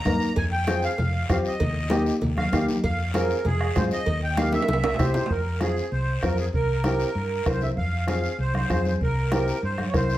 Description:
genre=latin, cumbia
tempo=194 BPM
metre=4/4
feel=straight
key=F minor, F harmonic minor from 5.3 s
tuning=A4 = 440 Hz
part: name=accordion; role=second line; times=0.0-10.2 s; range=Ab4 to Bb5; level=-28 LUFS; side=right 2 dB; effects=light tremolo tuning
part: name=dark upright piano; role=accompaniment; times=0.1-10.2 s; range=Bb3 to Bb4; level=-27 LUFS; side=left 1 dB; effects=none
part: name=hollow-body short-scale fingered electric bass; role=bass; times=0.1-10.2 s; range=C2 to Ab2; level=-27 LUFS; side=equal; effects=none
part: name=bombo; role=percussion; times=0.1-10.1 s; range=none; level=-30 LUFS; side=right 1 dB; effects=none
part: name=congas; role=percussion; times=0.1-10.1 s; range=none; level=-30 LUFS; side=equal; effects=none
part: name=cowbell and timbales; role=percussion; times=0.1-5.3 s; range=none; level=-31 LUFS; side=right 4 dB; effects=none
part: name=guiro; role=percussion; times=0.1-10.2 s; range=none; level=-41 LUFS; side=left 4 dB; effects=none
room=wet studio reverb, RT60 0.8 s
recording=heard from further back in the room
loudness=-22 LUFS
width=side -14 dB against mid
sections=0.0-5.3 A section; 5.3-10.2 B section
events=accordion solo 0.0-5.3, 5.3-10.2; drum fill 4.5-5.3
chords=0.4 Fm; 1.6 Eb; 2.8 Fm; 4.1 Eb; 4.7 C; 5.3 Fm; 6.5 C7; 7.8 Fm; 9.0 C7

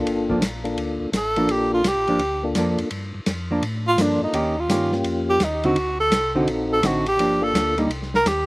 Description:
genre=soul jazz organ trio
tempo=168 BPM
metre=4/4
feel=swing 65% on 8ths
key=G minor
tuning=A4 = 440 Hz
part: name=percussive tonewheel organ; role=melody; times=0.0-7.9 s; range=Bb3 to A4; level=-25 LUFS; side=left 2 dB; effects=chorus vibrato, slow rotary speaker, slapback echo
part: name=tonewheel organ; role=bass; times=0.0-8.5 s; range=G1 to A2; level=-30 LUFS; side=equal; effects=stopped rotary speaker
part: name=warm soul drum kit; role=drums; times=0.1-8.4 s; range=hi-hat, kick drum, ride cymbal, snare drum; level=-28 LUFS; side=equal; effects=none
part: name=hollow-body jazz guitar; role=accompaniment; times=0.3-7.9 s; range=D3 to G4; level=-23 LUFS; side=right 1 dB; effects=none
part: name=breathy tenor saxophone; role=melody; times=1.2-8.5 s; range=D4 to Bb4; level=-21 LUFS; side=right 1 dB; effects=none
room=little or no reverb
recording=recorded outdoors, with no room sound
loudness=-19 LUFS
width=side -22 dB against mid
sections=0.0-8.5 A section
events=tenor saxophone solo 0.0-8.5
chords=0.1 Gm7; 4.3 Eb7; 5.8 D7b9; 7.2 Gm7; 7.9 Cm

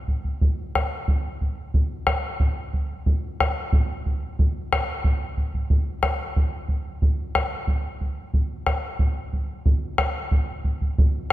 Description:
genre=andean folk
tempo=91 BPM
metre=4/4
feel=straight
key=none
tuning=none
part: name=bombo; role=percussion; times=0.1-11.3 s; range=none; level=-22 LUFS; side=equal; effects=none
room=moderate concert hall reverb, RT60 2.3 s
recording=none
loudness=-22 LUFS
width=side -14 dB against mid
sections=0.0-11.3 A section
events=none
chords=none

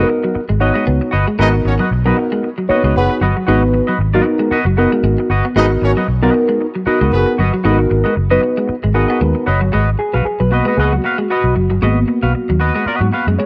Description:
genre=funk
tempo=115 BPM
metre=4/4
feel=swing 56% on 16ths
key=G# minor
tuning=A4 = 441 Hz
part: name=twangy electric guitar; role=accompaniment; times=0.0-13.4 s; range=F#4 to E#5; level=-23 LUFS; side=equal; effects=subtle chorus
part: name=clean electric guitar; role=riff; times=0.0-13.5 s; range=F#3 to B3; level=-25 LUFS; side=equal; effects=analog chorus
part: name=reed electric piano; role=stabs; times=0.0-13.5 s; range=A#3 to C#5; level=-19 LUFS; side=equal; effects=phaser
part: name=vintage muted fingered electric bass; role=bass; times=0.0-13.4 s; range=F#1 to G#2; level=-18 LUFS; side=equal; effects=none
part: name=mellow horn section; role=second line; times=1.4-7.3 s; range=B3 to D#5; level=-24 LUFS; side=equal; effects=analog delay
room=light reverb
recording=cassette tape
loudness=-15 LUFS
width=mono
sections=0.0-9.7 A section; 9.7-13.5 B section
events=reed electric piano fill 8.7-9.7; reed electric piano solo 9.7-13.5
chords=0.0 G#m7

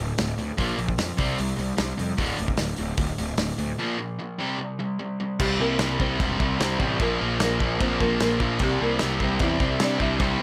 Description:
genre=punk rock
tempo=150 BPM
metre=4/4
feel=straight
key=unclear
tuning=A4 = 440 Hz
part: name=cranked stack guitar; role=riff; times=0.0-10.4 s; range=D2 to C4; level=-32 LUFS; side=equal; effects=overdrive
part: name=sludgy distorted guitar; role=riff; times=0.0-10.4 s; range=D2 to C4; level=-32 LUFS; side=equal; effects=overdrive
part: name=fuzz picked electric bass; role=bass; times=0.0-10.4 s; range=D1 to C3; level=-31 LUFS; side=equal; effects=overdrive
part: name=loose indie drum kit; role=drums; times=0.2-10.3 s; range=crash cymbal, hi-hat, kick drum, snare drum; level=-30 LUFS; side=equal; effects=none
part: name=folk marimba with medium hard mallets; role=melody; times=5.4-10.4 s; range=G3 to E5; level=-31 LUFS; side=equal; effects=none
part: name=raw garage guitar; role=riff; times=5.4-10.4 s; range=Bb2 to C4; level=-34 LUFS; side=equal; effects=none
room=light reverb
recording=none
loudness=-25 LUFS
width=mono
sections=0.0-5.4 A section; 5.4-10.4 B section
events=none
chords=0.0 D5; 0.6 Bb5; 1.2 C5; 2.2 D5; 3.8 Bb5; 4.4 C5; 7.0 Bb5; 8.6 C

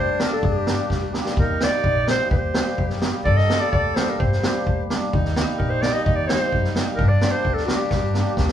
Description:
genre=klezmer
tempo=128 BPM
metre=2/4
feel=straight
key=unclear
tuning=A4 = 441 Hz
part: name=warm clarinet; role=melody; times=0.0-8.5 s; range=G4 to Eb5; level=-24 LUFS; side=right 1 dB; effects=none
part: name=accordion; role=second line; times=0.0-8.5 s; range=D4 to A4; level=-29 LUFS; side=left 3 dB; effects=none
part: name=cimbalom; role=accompaniment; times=0.0-8.5 s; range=G3 to Eb4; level=-28 LUFS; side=right 1 dB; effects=none
part: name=upright bass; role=bass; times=0.0-8.5 s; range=Bb1 to G2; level=-24 LUFS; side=left 1 dB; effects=none
part: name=street-band drum kit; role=drums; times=0.2-8.5 s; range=kick drum, snare drum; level=-23 LUFS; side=equal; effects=none
room=moderate studio ambience, RT60 0.5 s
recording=band playing live in one room, faint mains hum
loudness=-18 LUFS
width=side -10 dB against mid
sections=0.0-1.4 A section; 1.4-8.5 A section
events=drum fill 0.9-1.4, 7.9-8.5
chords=0.0 Gm; 1.4 Eb; 3.2 Gm; 5.1 Eb; 7.0 Gm

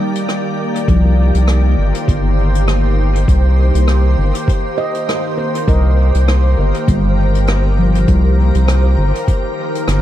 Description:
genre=ambient dub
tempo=100 BPM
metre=4/4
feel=swing 56% on 16ths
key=C minor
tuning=A4 = 441 Hz
part: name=soft additive organ-like pad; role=sustained chords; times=0.0-10.0 s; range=Eb3 to D5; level=-20 LUFS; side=left 1 dB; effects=ensemble chorus, built-in reverb
part: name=handpan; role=arpeggios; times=0.0-10.0 s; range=F3 to Eb5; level=-22 LUFS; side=left 1 dB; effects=tape echo
part: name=jazz brush drum kit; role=drums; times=0.2-10.0 s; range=hi-hat, rim click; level=-25 LUFS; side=left 1 dB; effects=dub echo
part: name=round analog bass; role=bass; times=0.9-10.0 s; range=G1 to C2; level=-12 LUFS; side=equal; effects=tube saturation
part: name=electronic kick drum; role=drums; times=0.9-9.4 s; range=none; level=-15 LUFS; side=equal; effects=none
part: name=wind-like tuned noise texture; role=texture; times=2.2-10.0 s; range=C5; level=-27 LUFS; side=equal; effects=built-in reverb
room=studio reverb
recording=none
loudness=-12 LUFS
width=side -12 dB against mid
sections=0.0-10.0 A section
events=none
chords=0.0 Cm7

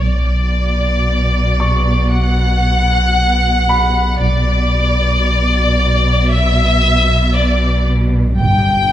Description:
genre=cinematic, suspense film score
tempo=57 BPM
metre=4/4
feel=straight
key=B minor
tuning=A4 = 440 Hz
part: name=rich chamber violin section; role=melody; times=0.0-8.9 s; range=D5 to G5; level=-16 LUFS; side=left 2 dB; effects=none
part: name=dark chamber double bass section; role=bass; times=0.0-8.9 s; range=G1 to B1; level=-20 LUFS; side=right 2 dB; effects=none
part: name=warm chamber cello section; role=bass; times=0.0-8.9 s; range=G2 to B2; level=-19 LUFS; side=right 2 dB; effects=none
part: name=saturated sub bass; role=drone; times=0.0-8.9 s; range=G1 to B1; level=-16 LUFS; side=equal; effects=none
part: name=bright baby grand piano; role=texture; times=0.0-8.4 s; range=B5 to C#6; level=-23 LUFS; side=right 2 dB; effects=none
room=wet recital hall reverb, RT60 1.7 s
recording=recorded in a church or concert hall, nothing above 10.7 kHz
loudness=-12 LUFS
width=side -11 dB against mid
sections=0.0-8.9 A section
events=none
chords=0.0 Bm; 8.4 N.C.

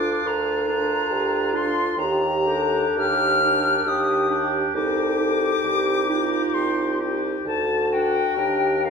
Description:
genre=classical, slow romantic movement for wind quintet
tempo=57-71 BPM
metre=3/4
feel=rubato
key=unclear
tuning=A4 = 440 Hz
part: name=silver concert flute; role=melody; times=0.0-8.9 s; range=F5 to F6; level=-24 LUFS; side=left 4 dB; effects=none
part: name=warm oboe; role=second line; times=0.0-8.9 s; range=F4 to Bb4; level=-29 LUFS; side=left 3 dB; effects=none
part: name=clear clarinet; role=accompaniment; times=0.0-8.9 s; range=D4 to Eb4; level=-28 LUFS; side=right 6 dB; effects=none
part: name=mellow French horn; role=accompaniment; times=0.0-8.9 s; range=F4 to Bb4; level=-26 LUFS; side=equal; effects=none
part: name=mellow bassoon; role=bass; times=0.0-8.9 s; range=C2 to Eb2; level=-26 LUFS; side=right 1 dB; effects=none
room=wet recital hall reverb, RT60 1.4 s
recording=recorded in a church or concert hall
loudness=-19 LUFS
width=side -5 dB against mid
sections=0.0-8.9 A section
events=none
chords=0.0 Bb/D; 2.0 Ebmaj7; 4.7 Am7b5/C; 7.5 D; 8.4 Ebmaj7

